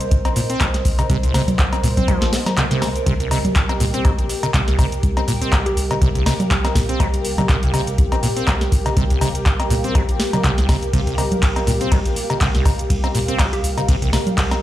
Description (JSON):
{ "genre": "acid house", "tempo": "122 BPM", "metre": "4/4", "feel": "swing 56% on 16ths", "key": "C minor", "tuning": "A4 = 441 Hz", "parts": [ { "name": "dark analog pad", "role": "sustained chords", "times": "0.0-14.6 s", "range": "G4 to C5", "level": "-28 LUFS", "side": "equal", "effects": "chorus, sidechain pumping" }, { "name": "warm sub bass", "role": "bass", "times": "0.0-14.6 s", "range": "Bb1 to C2", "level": "-24 LUFS", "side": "equal", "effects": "tube saturation, sidechain pumping" }, { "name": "booming analog drum machine", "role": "drums", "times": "0.0-14.6 s", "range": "cabasa, congas, cowbell, handclaps, hi-hat, ride cymbal, snare drum", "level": "-22 LUFS", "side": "left 1 dB", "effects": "none" }, { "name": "granular cloud pad", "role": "texture", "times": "0.0-14.6 s", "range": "Bb4 to F5", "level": "-29 LUFS", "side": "right 2 dB", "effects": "built-in reverb, sidechain pumping" }, { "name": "electronic kick drum", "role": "drums", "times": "0.1-14.5 s", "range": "none", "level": "-19 LUFS", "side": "equal", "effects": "none" }, { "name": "acid bass, saw", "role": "riff", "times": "0.2-14.5 s", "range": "C2 to C4", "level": "-23 LUFS", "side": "equal", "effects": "wide subtle chorus, ping-pong delay" }, { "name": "hollow square pluck", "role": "melody", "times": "5.7-6.0, 13.5-13.9 s", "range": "G4", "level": "-28 LUFS", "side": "equal", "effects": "chorus, ping-pong delay" } ], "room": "little or no reverb", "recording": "played on a big sound system in a bare room, large studio reverb", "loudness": "-16 LUFS", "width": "side -13 dB against mid", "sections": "0.0-14.6 A section", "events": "kick drops out 2.6-3.1", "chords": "0.0 Cm7" }